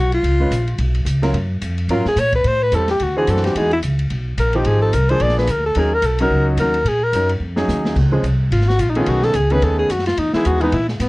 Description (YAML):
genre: jazz, small-group swing and bop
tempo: 218 BPM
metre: 4/4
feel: swing 59% on 8ths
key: unclear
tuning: A4 = 440 Hz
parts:
  - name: mellow alto saxophone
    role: melody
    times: 0.0-11.1 s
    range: G#3 to D5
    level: -18 LUFS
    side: left 1 dB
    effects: none
  - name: upright bass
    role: bass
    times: 0.0-11.1 s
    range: Ab1 to Bb2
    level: -19 LUFS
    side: equal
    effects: none
  - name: open jazz drum kit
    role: drums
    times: 0.1-11.1 s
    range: crash cymbal, hi-hat, kick drum, ride cymbal, snare drum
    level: -28 LUFS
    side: equal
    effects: none
  - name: clear concert grand piano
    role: accompaniment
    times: 0.4-10.7 s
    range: Eb3 to Cb5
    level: -21 LUFS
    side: equal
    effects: none
room: light reverb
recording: worn, warbling old tape, cassette tape, warbly pitch drift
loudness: -15 LUFS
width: side -21 dB against mid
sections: 0.0-8.0 A section; 8.0-11.1 B section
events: drum fill 7.4-8.0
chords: 0.2 Db7; 1.3 Gbmaj7; 2.4 Am7; 3.0 D9; 3.5 Emaj9; 4.7 Fm7; 5.2 Bb7; 5.8 Ebm7; 8.0 Dbmaj7; 9.1 B13; 10.2 Emaj7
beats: | 0.24 0.51 0.79 1.06 | 1.34 1.62 1.89 2.17 | 2.44 2.72 3.00 3.27 | 3.55 3.82 4.10 4.38 | 4.65 4.93 5.21 5.48 | 5.76 6.03 6.31 6.58 | 6.86 7.14 7.41 7.69 | 7.96 8.24 8.52 8.79 | 9.07 9.34 9.62 9.89 | 10.17 10.45 10.72 11.00